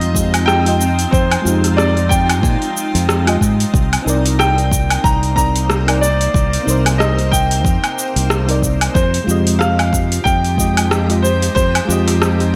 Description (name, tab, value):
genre	sunset chillout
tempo	92 BPM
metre	4/4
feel	swing 57% on 16ths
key	unclear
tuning	A4 = 440 Hz
part	warm concert grand piano	melody	0.0-12.6 s	C5 to Bb5	-22 LUFS	equal	delay
part	mellow FM electric piano	accompaniment	0.0-12.6 s	G3 to Eb5	-24 LUFS	equal	chorus
part	shimmering ambient pad	sustained chords	0.0-12.6 s	C3 to C5	-28 LUFS	equal	chorus, built-in reverb
part	modern bright fingered electric bass	bass	0.0-12.6 s	C2 to Bb2	-19 LUFS	equal	none
part	deep house drum kit	drums	0.0-12.5 s	cabasa, hi-hat, rim click, woodblock	-22 LUFS	equal	overdrive, gated reverb
part	electronic kick drum	drums	0.1-11.7 s	none	-20 LUFS	equal	overdrive
room	moderate lush hall reverb, RT60 1.6 s, digital ambience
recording	bright 1980s-style digital production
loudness	-15 LUFS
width	mono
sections	0.0-12.6 A section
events	none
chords	0.0 Fm9; 3.7 Cm9; 9.0 Fm9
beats	0.47 | 1.13 1.78 2.43 3.08 | 3.73 4.39 5.04 5.69 | 6.34 7.00 7.65 8.30 | 8.95 9.61 10.26 10.91 | 11.56 12.21